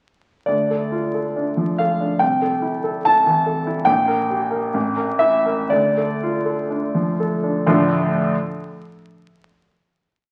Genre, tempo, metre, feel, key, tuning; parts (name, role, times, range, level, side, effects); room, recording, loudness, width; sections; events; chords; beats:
classical, romantic character piece for solo piano; 59-74 BPM; 2/4; rubato; D minor; A4 = 435 Hz
clear concert grand piano; solo; 0.5-8.4 s; A1 to A5; -20 LUFS; equal
wet recital hall reverb, RT60 1.5 s; very old 78 rpm record, vinyl crackle; -20 LUFS; mono
0.5-7.7 A section; 7.7-9.6 final chord
slowing down 3.1-7.7
0.5 Dm; 2.2 Am/C; 3.9 Gm/Bb; 4.7 A5; 5.7 Dm
| 0.47 1.35 | 2.21 3.06 | 3.88 4.75 | 5.70 6.69 | 7.67